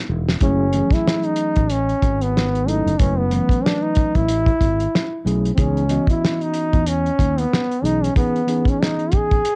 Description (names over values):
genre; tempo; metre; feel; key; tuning
hip hop, jazz-hop; 93 BPM; 4/4; swing 58% on 16ths; F# dorian; A4 = 440 Hz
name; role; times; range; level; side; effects
mellow tine electric piano; accompaniment; 0.0-9.4 s; E3 to D#5; -26 LUFS; equal; cassette tape
fretless electric bass; bass; 0.1-8.1 s; E1 to E2; -24 LUFS; equal; none
cloth-damped thuddy drum kit; drums; 0.3-9.6 s; hi-hat, kick drum, snare drum; -22 LUFS; equal; cassette tape
warm trombone; melody; 0.4-9.6 s; B3 to G#4; -23 LUFS; equal; cassette tape
room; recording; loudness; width
light reverb; home recording on cassette; -19 LUFS; mono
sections
0.4-9.6 A section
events
drum fill 0.0-0.4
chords
0.4 F#m9; 5.6 C#m9